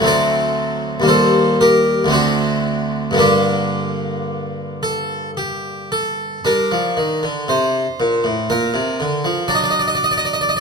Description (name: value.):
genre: classical, baroque-style suite movement for harpsichord.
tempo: 54-61 BPM.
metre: 3/4.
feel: rubato.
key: G minor.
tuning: A4 = 441 Hz.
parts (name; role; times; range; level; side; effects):
harpsichord; solo; 0.0-10.6 s; D2 to Eb5; -15 LUFS; equal; none.
room: moderate recital hall reverb, RT60 1.3 s.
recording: close, detailed microphones.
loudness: -15 LUFS.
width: side -5 dB against mid.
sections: 0.0-6.5 A section; 6.5-10.6 B section.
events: none.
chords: 0.1 D7; 1.1 Eb; 2.1 D7; 3.2 Gm; 6.5 Gm (rootless); 9.5 D/F#.